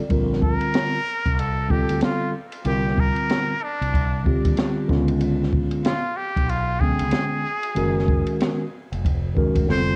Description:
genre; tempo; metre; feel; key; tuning
hip hop, jazz-hop; 94 BPM; 4/4; swing 63% on 16ths; unclear; A4 = 440 Hz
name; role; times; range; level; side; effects
mellow tine electric piano; accompaniment; 0.0-10.0 s; D3 to G5; -26 LUFS; equal; cassette tape
mellow fretless electric bass; bass; 0.1-10.0 s; F1 to Eb2; -28 LUFS; equal; none
open jazz drum kit; drums; 0.1-9.9 s; hi-hat, kick drum, ride cymbal, snare drum; -26 LUFS; equal; none
trumpet with straight mute; melody; 0.4-10.0 s; D4 to C5; -29 LUFS; equal; cassette tape, tape echo
room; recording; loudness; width
light reverb, small room ambience; home recording on cassette; -22 LUFS; mono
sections
0.1-10.0 A section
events
muted trumpet solo 0.1-10.0; drum fill 9.7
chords
0.1 Bbmaj9; 2.7 C9sus4; 4.9 Db7b9; 7.8 Gbmaj9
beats
| 0.11 0.75 1.38 2.02 | 2.66 3.30 3.94 4.58 | 5.21 5.85 6.49 7.13 | 7.77 8.40 9.04 9.68

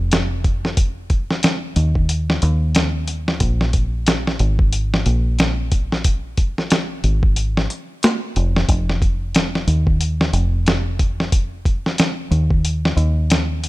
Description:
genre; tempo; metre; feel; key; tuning
trip hop; 91 BPM; 4/4; swing 58% on 16ths; unclear; A4 = 440 Hz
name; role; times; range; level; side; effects
deep dub fingered electric bass; bass; 0.0-13.7 s; F1 to Eb2; -19 LUFS; equal; none
dusty soul sampler-style drum kit; drums; 0.1-13.7 s; hi-hat, kick drum, snare drum; -18 LUFS; equal; vintage 12-bit sampler grit, small room ambience
room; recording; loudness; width
little or no reverb; none; -16 LUFS; side -19 dB against mid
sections
0.0-13.7 A section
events
none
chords
none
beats
0.12 | 0.78 1.44 2.09 2.75 | 3.41 4.07 4.73 5.39 | 6.05 6.71 7.37 8.03 | 8.69 9.35 10.01 10.67 | 11.32 11.98 12.64 13.30

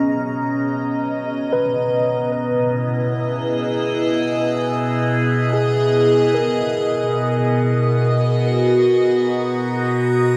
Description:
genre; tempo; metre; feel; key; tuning
ambient; free time; none; none; unclear; A4 = 440 Hz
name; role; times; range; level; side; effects
evolving wavetable pad; sustained chords; 0.0-10.4 s; B2 to A#5; -20 LUFS; equal; phaser, built-in reverb
mellow tine electric piano; arpeggios; 0.0-10.4 s; G#4 to D#5; -26 LUFS; equal; analog delay
room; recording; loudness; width
wet huge ambient reverb, RT60 8.9 s; dreamy mix soaked in reverb; -19 LUFS; mono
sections
0.0-10.4 A section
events
none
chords
0.0 Bmaj9; 2.3 C#m7/B; 7.2 G#m7/B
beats
free time

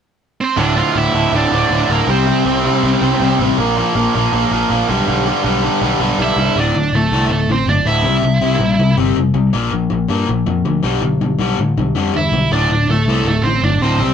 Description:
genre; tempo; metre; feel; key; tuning
punk; 161 BPM; 4/4; straight; D minor; A4 = 440 Hz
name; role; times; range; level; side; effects
high-gain lead guitar; melody; 0.4-3.4, 6.2-8.9, 12.2-14.1 s; A3 to F5; -18 LUFS; right 4 dB; distortion
biting overdriven guitar; riff; 0.6-6.6 s; D2 to C4; -18 LUFS; right 10 dB; none
cranked stack guitar; riff; 0.6-14.1 s; D2 to C4; -17 LUFS; left 5 dB; overdrive
picked electric bass; bass; 0.6-14.1 s; D1 to A2; -19 LUFS; right 1 dB; none
room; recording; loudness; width
moderate studio reverb, RT60 0.5 s; band playing live in one room; -13 LUFS; side -8 dB against mid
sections
0.6-6.6 A section; 6.6-14.1 B section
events
none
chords
0.0 N.C.; 0.6 Dm; 2.1 C5; 3.6 Bb5; 4.9 G/B; 6.6 D5; 8.1 C; 9.5 Bb5; 10.8 G/B; 12.5 D5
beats
0.21 | 0.58 0.96 1.33 1.71 | 2.08 2.46 2.83 3.20 | 3.58 3.95 4.32 4.70 | 5.07 5.45 5.82 6.19 | 6.56 6.94 7.31 7.68 | 8.05 8.43 8.80 9.17 | 9.54 9.91 10.29 10.66 | 11.03 11.40 11.77 12.14 | 12.52 12.89 13.26 13.63 | 14.00

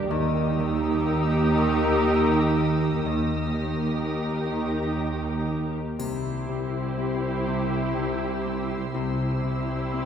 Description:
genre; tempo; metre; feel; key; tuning
cinematic, suspense film score; 61 BPM; 3/4; straight; unclear; A4 = 440 Hz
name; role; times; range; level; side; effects
muted studio violin section; melody; 0.0-10.1 s; Bb4 to C5; -34 LUFS; left 4 dB; none
muted symphonic violin section; second line; 0.0-10.1 s; G4; -32 LUFS; left 1 dB; none
muted studio viola section; accompaniment; 0.0-10.1 s; Eb4 to E4; -30 LUFS; right 2 dB; none
Celtic harp; riff; 0.0-10.1 s; G2 to Eb4; -31 LUFS; left 6 dB; none
muted studio cello section; bass; 0.0-10.1 s; C2 to Eb2; -29 LUFS; right 2 dB; none
muted studio double bass section; bass; 0.0-10.1 s; C2 to Eb2; -30 LUFS; right 3 dB; none
muted studio violin section; texture; 0.1-10.1 s; C6 to Bb6; -38 LUFS; left 2 dB; none
triangle; percussion; 6.0-7.9 s; none; -44 LUFS; left 3 dB; none
room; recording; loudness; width
wet scoring stage reverb, RT60 2.0 s; heard from further back in the room; -23 LUFS; side -8 dB against mid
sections
0.0-10.1 A section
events
none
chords
0.1 Eb; 6.0 C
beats
| 0.09 1.07 2.06 | 3.04 4.02 5.01 | 5.99 6.97 7.96 | 8.94 9.93

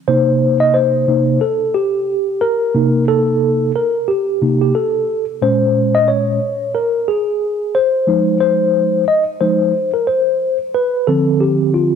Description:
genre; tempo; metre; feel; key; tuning
hip hop; 90 BPM; 4/4; swing 58% on 16ths; unclear; A4 = 441 Hz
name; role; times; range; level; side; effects
mellow tine electric piano; solo; 0.1-12.0 s; Bb2 to Eb5; -13 LUFS; equal; medium stereo tremolo
room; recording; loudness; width
moderate echo chamber reverb, RT60 2.2 s; dark, warm production; -13 LUFS; side -7 dB against mid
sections
0.1-10.8 A section; 10.8-12.0 B section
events
tine electric piano solo 0.1-10.8, 10.8-12.0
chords
0.1 Cm7; 5.4 Bbm7; 8.1 Fm7; 10.8 Dm7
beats
| 0.09 0.75 1.42 2.08 | 2.75 3.42 4.08 4.75 | 5.42 6.08 6.75 7.42 | 8.09 8.75 9.42 10.09 | 10.75 11.42

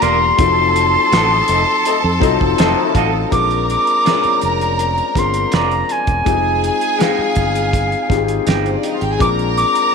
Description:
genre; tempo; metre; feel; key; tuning
lush 1970s-style soul; 82 BPM; 4/4; straight; F dorian; A4 = 441 Hz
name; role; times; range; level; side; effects
concert flute; melody; 0.0-9.9 s; F5 to D6; -17 LUFS; equal; slapback echo
warm studio violin section; second line; 0.0-9.9 s; C4 to Bb5; -22 LUFS; right 2 dB; none
warm grand piano; accompaniment; 0.0-9.9 s; Gb3 to A5; -20 LUFS; left 11 dB; none
electric guitar through a small old amp; riff; 0.0-8.7 s; Ab3 to Eb5; -24 LUFS; right 12 dB; spring reverb
warm horn section; stabs; 0.0-3.1 s; A3 to F4; -24 LUFS; left 10 dB; none
fingered electric bass; bass; 0.0-9.6 s; E1 to F2; -21 LUFS; right 2 dB; none
cloth-damped thuddy drum kit; drums; 0.0-9.9 s; hi-hat, kick drum, snare drum; -20 LUFS; right 2 dB; none
room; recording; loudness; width
moderate echo chamber reverb, RT60 2.5 s; 1960s-style stereo with parts hard left and right; -13 LUFS; side -5 dB against mid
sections
0.0-3.3 A section; 3.3-9.9 B section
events
grand piano fill 2.2-3.3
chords
0.4 F7b9; 3.3 Bb7; 6.3 Fm9; 9.2 Bb7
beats
| 0.39 1.12 1.86 2.59 | 3.33 4.06 4.79 5.53 | 6.26 7.00 7.73 8.47 | 9.20 9.94

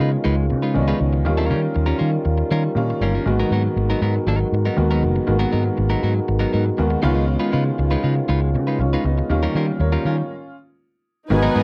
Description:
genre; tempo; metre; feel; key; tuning
disco; 119 BPM; 4/4; straight; G# dorian; A4 = 439 Hz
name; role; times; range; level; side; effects
clean electric guitar; accompaniment; 0.0-11.6 s; F#3 to B4; -27 LUFS; equal; none
clear grand piano; accompaniment; 0.0-11.6 s; D#3 to C#5; -27 LUFS; equal; none
mellow French horn section; sustained chords; 0.0-11.6 s; B2 to A#4; -28 LUFS; equal; none
vintage muted fingered electric bass; bass; 0.0-11.6 s; F#1 to D#3; -22 LUFS; equal; none
warm studio string section; second line; 11.3-11.6 s; D#4 to G#5; -24 LUFS; equal; none
room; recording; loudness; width
little or no reverb; dry, close 1970s-style studio recording; -20 LUFS; mono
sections
0.0-11.3 A section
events
stop 10.3-11.3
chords
0.0 C#9; 1.3 D#9; 3.3 G#m9; 7.0 C#9; 9.3 D#9; 10.3 N.C.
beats
0.25 0.75 | 1.26 1.76 2.26 2.76 | 3.27 3.77 4.27 4.77 | 5.28 5.78 6.28 6.78 | 7.29 7.79 8.29 8.79 | 9.30 9.80 10.30 10.80 | 11.31

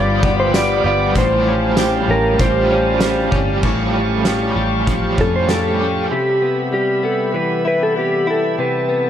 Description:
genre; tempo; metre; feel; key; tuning
dream pop; 97 BPM; 4/4; straight; unclear; A4 = 440 Hz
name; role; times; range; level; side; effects
clean lap steel guitar; melody; 0.0-9.1 s; G4 to D5; -19 LUFS; equal; digital delay
overdriven semi-hollow guitar; accompaniment; 0.0-6.1 s; A2 to G4; -24 LUFS; right 4 dB; tremolo, ensemble chorus
bright tonewheel organ; sustained chords; 0.0-9.1 s; F4 to D6; -23 LUFS; equal; overdrive, slow rotary speaker
direct-recorded clean electric guitar; arpeggios; 0.0-9.1 s; G2 to G4; -20 LUFS; left 3 dB; analog chorus, digital delay
vintage muted fingered electric bass; bass; 0.0-6.1 s; G1 to E#2; -22 LUFS; equal; none
small celesta; texture; 0.0-6.4 s; none; barely audible; none; none
loose indie drum kit; drums; 0.2-5.6 s; crash cymbal, hi-hat, kick drum, snare drum, tambourine; -21 LUFS; equal; none
room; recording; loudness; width
moderate huge ambient reverb, RT60 4.4 s; none; -14 LUFS; side -10 dB against mid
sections
0.0-3.6 A section; 3.6-6.1 B section; 6.1-9.1 C section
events
none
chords
0.0 G7; 1.2 A7alt; 3.6 Aaug7; 6.1 Cmaj7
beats
0.54 | 1.16 1.78 2.40 3.02 | 3.63 4.25 4.87 5.49 | 6.11 6.73 7.34 7.96 | 8.58

